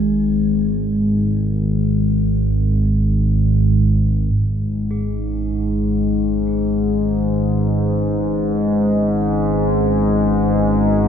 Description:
dark ambient drone; free time; G# minor; A4 = 440 Hz
gamelan-type bronze metallophone; arpeggios; 0.0-11.1 s; G#3 to G#4; -43 LUFS; right 1 dB
analog drone; drone; 0.0-11.1 s; G#1 to G#2; -15 LUFS; equal; chorus
bronze singing bowl; texture; 0.0-4.4 s; G#4; -43 LUFS; right 3 dB
dark analog pad; sustained chords; 4.3-11.1 s; C#4 to B4; -33 LUFS; right 2 dB
wet cathedral reverb, RT60 5.1 s; in a vast, echoing space, nothing above 7.8 kHz; -15 LUFS; side -8 dB against mid
0.0-4.3 A section; 4.3-11.1 B section
0.0 N.C.; 4.3 G#m

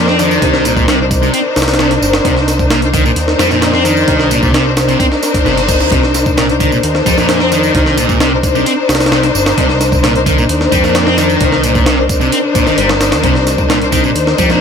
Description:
breakbeat, breaks; 131 BPM; 4/4; straight; C minor; A4 = 438 Hz
sludgy distorted guitar; riff; 0.0-14.6 s; Bb2 to C4; -15 LUFS; right 1 dB; overdrive, tube saturation, ping-pong delay
dark studio string section; stabs; 0.0-14.6 s; D4 to C5; -14 LUFS; left 4 dB; ping-pong delay
fat analog bass; bass; 0.0-14.6 s; G1 to F2; -17 LUFS; right 1 dB; tube saturation
breakbeat sampler-style drum kit; drums; 0.1-14.6 s; hi-hat, kick drum, snare drum; -15 LUFS; right 1 dB
tambourine; drums; 0.2-14.6 s; -25 LUFS; right 5 dB; overdrive
reverse cymbal; sound effects; 5.2-5.9 s; -23 LUFS; right 6 dB
light reverb, digital ambience; -9 LUFS; side -7 dB against mid
0.0-14.6 A section
reverse cymbal 5.2-5.9
0.0 Cm9

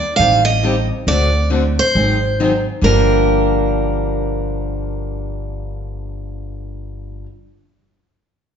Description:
acoustic string swing (jazz manouche); 136 BPM; 4/4; swing 63% on 8ths; G minor; A4 = 440 Hz
picked steel-string acoustic guitar; melody; 0.0-7.3 s; Bb4 to F5; -18 LUFS; right 4 dB
picked steel-string acoustic guitar; accompaniment; 0.2-7.3 s; G2 to A4; -21 LUFS; left 3 dB
upright bass; bass; 0.2-7.2 s; G1 to D2; -20 LUFS; equal
wet large studio reverb, RT60 1.2 s; band playing live in one room, nothing above 7.7 kHz; -14 LUFS; side -7 dB against mid
0.0-2.8 A section; 2.8-6.4 B section
0.2 Am7b5; 1.1 D7; 2.0 Ab7; 2.8 Gm7

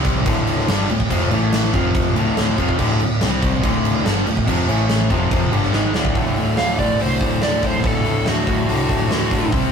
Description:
hard rock; 143 BPM; 4/4; straight; A4 = 441 Hz
overdriven semi-hollow guitar; riff; 0.0-9.7 s; D2 to C4; -23 LUFS; left 4 dB
raw garage guitar; riff; 0.0-9.7 s; D2 to C5; -25 LUFS; equal; overdrive
tight distorted guitar; riff; 0.0-9.7 s; D2 to C4; -25 LUFS; right 4 dB; distortion
hollow-body short-scale picked electric bass; bass; 0.0-9.7 s; D1 to D2; -24 LUFS; equal
huge arena drum kit; drums; 0.0-9.6 s; crash cymbal, hi-hat, kick drum, snare drum; -20 LUFS; equal
dark smooth lead guitar; melody; 6.6-9.5 s; F#4 to F5; -23 LUFS; right 2 dB; overdrive
moderate booth ambience, RT60 0.2 s; rough rehearsal-room recording, tube saturation; -16 LUFS; side -6 dB against mid
0.0-6.2 A section; 6.2-9.7 B section
drum fill 5.7-6.2; lead electric guitar solo 6.2-9.7
0.3 D5; 1.3 A5; 1.7 F5; 2.2 D5; 3.2 C5; 3.6 D5; 4.7 A5; 5.1 D5; 6.2 D

